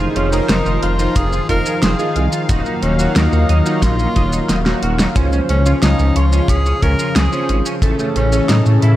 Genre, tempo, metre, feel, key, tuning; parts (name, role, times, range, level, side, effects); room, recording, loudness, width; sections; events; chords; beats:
synthwave; 90 BPM; 4/4; straight; Db major; A4 = 440 Hz
warm analog pad; sustained chords; 0.0-9.0 s; Db3 to F5; -21 LUFS; left 1 dB; chorus, sidechain pumping
clean electric guitar; riff; 0.0-8.9 s; A3 to F5; -28 LUFS; right 2 dB; ensemble chorus, tape echo
chorused polysynth; stabs; 0.0-9.0 s; Gb3 to Db5; -23 LUFS; right 2 dB
dark detuned saw bass; bass; 0.0-8.9 s; Eb1 to A2; -16 LUFS; equal; tube saturation
clear tenor saxophone; melody; 0.2-9.0 s; C#4 to Bb4; -23 LUFS; equal; tape echo
pop drum kit; drums; 0.2-9.0 s; hi-hat, shaker, snare drum; -20 LUFS; equal; studio reverb
kick drum; drums; 1.2-8.0 s; -20 LUFS; equal; studio reverb
light reverb, small room ambience; dark, warm production; -13 LUFS; side -14 dB against mid
0.0-9.0 A section
drum fill 4.5-5.2
0.0 Fm7; 2.5 Ebmadd9; 5.2 Dbmaj7; 7.8 Amaj7
0.49 1.16 1.82 | 2.49 3.16 3.83 4.49 | 5.16 5.83 6.49 7.16 | 7.83 8.49